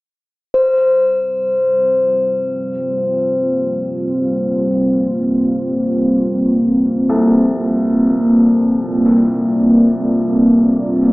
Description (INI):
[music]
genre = dark ambient drone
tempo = free time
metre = none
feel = none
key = G minor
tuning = A4 = 439 Hz
[part]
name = bronze singing bowl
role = texture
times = 0.5-11.1 s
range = C5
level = -18 LUFS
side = left 1 dB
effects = none
[part]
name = deep dark ambient pad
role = sustained chords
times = 1.8-11.1 s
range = G3 to D5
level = -13 LUFS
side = equal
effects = chorus, built-in reverb
[part]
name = deep rumbling drone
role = drone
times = 3.3-11.1 s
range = G1 to D2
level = -46 LUFS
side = equal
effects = none
[part]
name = warm baby grand piano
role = arpeggios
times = 7.1-11.1 s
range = C2 to A4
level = -25 LUFS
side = equal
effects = dub echo
[sound]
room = wet spring reverb, RT60 2.5 s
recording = echo-heavy mix, small speaker sound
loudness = -13 LUFS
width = side -21 dB against mid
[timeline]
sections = 0.6-11.1 A section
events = fade-in on grand piano 0.6-11.1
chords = 0.6 Gm